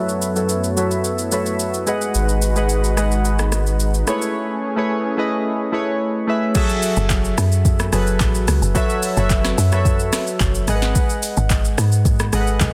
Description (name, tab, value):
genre	amapiano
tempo	109 BPM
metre	4/4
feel	straight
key	F# dorian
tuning	A4 = 440 Hz
part	warm analog keys	accompaniment	0.0-12.7 s	F#3 to F#5	-23 LUFS	equal	chorus, low-pass filter
part	lush unison pad	sustained chords	0.0-6.5 s	F#2 to B4	-29 LUFS	equal	chorus, low-pass filter
part	smooth R&B drum kit	drums	0.1-12.7 s	crash cymbal, handclaps, hi-hat, kick drum, rim click, shaker, snare drum	-23 LUFS	equal	overdrive
part	warm sub bass	bass	2.1-4.0 s	G#1	-21 LUFS	equal	none
part	woody log drum bass	bass	7.0-12.7 s	F#1 to G#2	-21 LUFS	equal	none
room	light reverb, digital ambience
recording	dense, heavily limited modern master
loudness	-19 LUFS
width	mono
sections	0.0-6.6 A section; 6.6-12.7 B section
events	filter sweep 0.0-6.6; break 4.3-6.6; drop 6.6-12.7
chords	0.0 B9sus4/F#; 1.9 G#m7; 4.1 Amaj7; 6.6 F#m7; 8.8 B9sus4/F#; 10.7 G#m7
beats	0.50 1.05 1.60 | 2.15 2.70 3.25 3.80 | 4.35 4.90 5.45 6.00 | 6.55 7.10 7.65 8.20 | 8.75 9.30 9.85 10.40 | 10.95 11.51 12.05 12.61